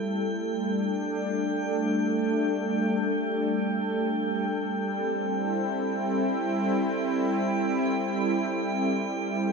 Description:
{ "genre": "ambient", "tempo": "free time", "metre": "none", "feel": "none", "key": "A minor", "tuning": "A4 = 444 Hz", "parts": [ { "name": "warm analog pad", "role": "sustained chords", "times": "0.0-9.5 s", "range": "G3 to A4", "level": "-26 LUFS", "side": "equal", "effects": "chorus, tremolo" }, { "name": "drifting glass-harmonics texture", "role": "texture", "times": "0.0-9.5 s", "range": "G5", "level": "-33 LUFS", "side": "right 1 dB", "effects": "chorus, built-in reverb" } ], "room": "wet huge ambient reverb, RT60 7.2 s", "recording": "none", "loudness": "-25 LUFS", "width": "side -4 dB against mid", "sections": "0.0-9.5 A section", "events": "fade-in on synth texture 0.0-9.5", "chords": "0.0 Am7", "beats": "free time" }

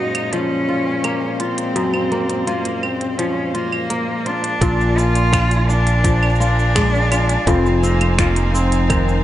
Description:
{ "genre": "folktronica", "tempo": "84 BPM", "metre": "4/4", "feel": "straight", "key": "unclear", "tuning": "A4 = 439 Hz", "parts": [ { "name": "clear cello", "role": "melody", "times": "0.0-9.2 s", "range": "Bb3 to F4", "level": "-21 LUFS", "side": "equal", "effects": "tape echo" }, { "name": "rich string quartet", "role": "sustained chords", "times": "0.0-9.2 s", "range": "Bb2 to Ab5", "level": "-26 LUFS", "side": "right 1 dB", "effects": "vintage 12-bit sampler grit" }, { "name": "kora", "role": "arpeggios", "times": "0.0-9.2 s", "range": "F2 to F4", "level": "-22 LUFS", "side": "left 1 dB", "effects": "tape echo" }, { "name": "organic electronic drum kit", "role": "drums", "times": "0.1-9.2 s", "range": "claves, finger snaps, hi-hat, shaker", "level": "-26 LUFS", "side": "right 2 dB", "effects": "none" }, { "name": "modern bright fingered electric bass", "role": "bass", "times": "4.6-9.2 s", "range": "F1 to Bb1", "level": "-17 LUFS", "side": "equal", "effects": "none" }, { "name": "electronic kick drum", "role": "drums", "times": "4.6-9.0 s", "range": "none", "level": "-20 LUFS", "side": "equal", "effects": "none" } ], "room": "moderate plate reverb, RT60 1.9 s", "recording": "dreamy mix soaked in reverb, nothing above 10.8 kHz", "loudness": "-15 LUFS", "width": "side -13 dB against mid", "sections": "0.0-4.6 A section; 4.6-9.2 B section", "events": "none", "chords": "0.0 Gbmaj9#11; 4.6 Bb7; 7.5 Fm7", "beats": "0.33 1.05 | 1.76 2.48 3.19 3.90 | 4.62 5.33 6.05 6.76 | 7.47 8.19 8.90" }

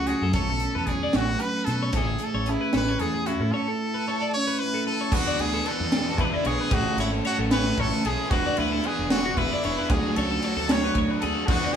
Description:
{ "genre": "math rock and midwest emo", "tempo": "75 BPM (dotted quarters)", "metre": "6/8", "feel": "straight", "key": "A major", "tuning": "A4 = 442 Hz", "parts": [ { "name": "brilliant trumpet", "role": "melody", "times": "0.0-11.8 s", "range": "D4 to C#5", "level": "-28 LUFS", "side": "equal", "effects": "none" }, { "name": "electric guitar through a small old amp", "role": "accompaniment", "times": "0.0-6.7 s", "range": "F#2 to A4", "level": "-30 LUFS", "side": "right 2 dB", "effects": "none" }, { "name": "twelve-string electric guitar", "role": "arpeggios", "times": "0.0-11.8 s", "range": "F#4 to D5", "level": "-31 LUFS", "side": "left 5 dB", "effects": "none" }, { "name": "growling fingered electric bass", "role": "bass", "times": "0.0-11.6 s", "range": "E1 to B2", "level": "-29 LUFS", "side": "equal", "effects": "overdrive" }, { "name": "crisp fusion drum kit", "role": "drums", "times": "0.1-11.6 s", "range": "crash cymbal, hi-hat, kick drum, ride cymbal, snare drum", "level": "-28 LUFS", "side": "equal", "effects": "none" }, { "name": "biting overdriven guitar", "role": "riff", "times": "5.1-11.8 s", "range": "A2 to A4", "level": "-28 LUFS", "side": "right 2 dB", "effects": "none" } ], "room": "light reverb", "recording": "band playing live in one room, small room ambience", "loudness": "-22 LUFS", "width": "side -8 dB against mid", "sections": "0.0-5.1 A section; 5.1-11.8 B section", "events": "none", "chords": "0.4 B7sus2; 1.9 Amaj9; 5.1 E7sus4; 6.7 Amaj9; 8.3 E9sus4; 9.9 Dmaj7", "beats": "| 0.35 1.15 | 1.95 2.74 | 3.54 4.33 | 5.13 5.93 | 6.72 7.52 | 8.31 9.11 | 9.91 10.70 | 11.50" }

